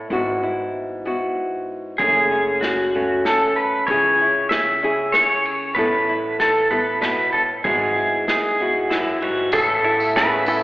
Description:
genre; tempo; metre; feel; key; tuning
acoustic folk duo or small band; 96 BPM; 3/4; straight; E major; A4 = 440 Hz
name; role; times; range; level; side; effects
nylon-string guitar; accompaniment; 0.0-10.6 s; F#2 to A4; -23 LUFS; equal; none
upright bass; bass; 0.1-10.6 s; F#1 to C#2; -36 LUFS; equal; none
pedal steel guitar; second line; 2.0-10.6 s; E4 to E5; -18 LUFS; equal; slapback echo
unplugged drum kit; drums; 2.0-10.3 s; hi-hat, kick drum, ride cymbal, snare drum; -29 LUFS; equal; slapback echo
musette accordion; sustained chords; 9.5-10.6 s; C#3 to E5; -24 LUFS; equal; none
open-back banjo; arpeggios; 9.5-10.6 s; E4 to A4; -22 LUFS; right 2 dB; none
tambourine; percussion; 9.5-10.6 s; none; -37 LUFS; equal; none
room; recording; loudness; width
moderate club reverb, RT60 0.6 s; live gig heard through the venue's PA, recital hall reverb, telephone sound; -17 LUFS; side -18 dB against mid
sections
0.0-9.5 A section; 9.5-10.6 B section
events
none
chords
0.1 Eadd9/G#; 2.0 F#madd9; 3.9 C#m; 5.8 Asus2; 7.6 Eadd9/G#; 9.5 Aadd9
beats
| 0.10 0.73 1.36 | 1.99 2.62 3.25 | 3.88 4.50 5.13 | 5.76 6.39 7.02 | 7.65 8.27 8.90 | 9.53 10.16

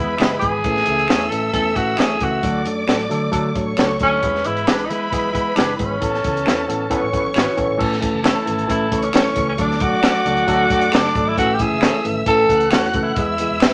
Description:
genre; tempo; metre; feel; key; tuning
uptempo 1960s-style soul; 134 BPM; 4/4; straight; A major; A4 = 442 Hz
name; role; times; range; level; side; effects
breathy tenor saxophone; melody; 0.0-13.7 s; C#4 to A4; -22 LUFS; equal; none
dark studio violin section; second line; 0.0-13.7 s; A4 to F#6; -28 LUFS; equal; none
warm horn section; second line; 0.0-0.5, 6.9-7.7 s; E3 to B4; -31 LUFS; equal; none
tine electric piano; accompaniment; 0.0-13.7 s; E3 to A4; -25 LUFS; equal; none
vintage muted fingered electric bass; bass; 0.0-13.7 s; E1 to E3; -33 LUFS; equal; none
electric guitar through a small old amp; stabs; 0.2-13.7 s; B3 to D5; -28 LUFS; equal; none
compact cocktail drum kit; drums; 0.2-13.7 s; crash cymbal, hi-hat, kick drum, snare drum; -22 LUFS; equal; none
finger snap; percussion; 0.2-13.7 s; none; -31 LUFS; equal; none
room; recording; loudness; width
wet studio ambience, RT60 0.5 s; none; -18 LUFS; mono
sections
0.0-7.8 A section; 7.8-13.7 B section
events
band accent 0.0-0.7, 6.0-7.8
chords
0.0 E; 0.7 A; 2.4 D; 4.2 E; 6.0 Aadd9; 7.8 A; 9.6 D; 11.4 A; 13.2 E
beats
0.20 | 0.65 1.10 1.55 1.99 | 2.44 2.89 3.34 3.79 | 4.23 4.68 5.13 5.57 | 6.02 6.47 6.91 7.36 | 7.81 8.25 8.70 9.15 | 9.59 10.04 10.49 10.93 | 11.38 11.83 12.28 12.72 | 13.17 13.62

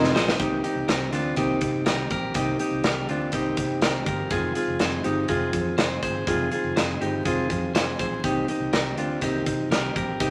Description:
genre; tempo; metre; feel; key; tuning
jangly indie pop; 122 BPM; 4/4; straight; C minor; A4 = 440 Hz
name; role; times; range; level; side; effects
fingerpicked plugged-in steel-string acoustic guitar; accompaniment; 0.0-10.3 s; F2 to G4; -31 LUFS; equal; none
clean electric guitar; arpeggios; 0.0-10.3 s; D4 to C5; -30 LUFS; equal; none
vintage muted fingered electric bass; bass; 0.0-10.3 s; F1 to C3; -35 LUFS; equal; none
big rock drum kit; drums; 0.0-10.3 s; hi-hat, kick drum, snare drum; -29 LUFS; equal; none
room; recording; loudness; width
moderate studio reverb, RT60 0.7 s; vinyl crackle; -25 LUFS; mono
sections
0.4-10.3 A section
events
drum fill 0.0-0.4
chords
0.4 Cm7; 4.3 Fm7; 8.2 Cm7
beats
| 0.40 0.89 1.38 1.86 | 2.35 2.84 3.33 3.82 | 4.31 4.80 5.29 5.78 | 6.27 6.76 7.25 7.74 | 8.23 8.72 9.22 9.71 | 10.20

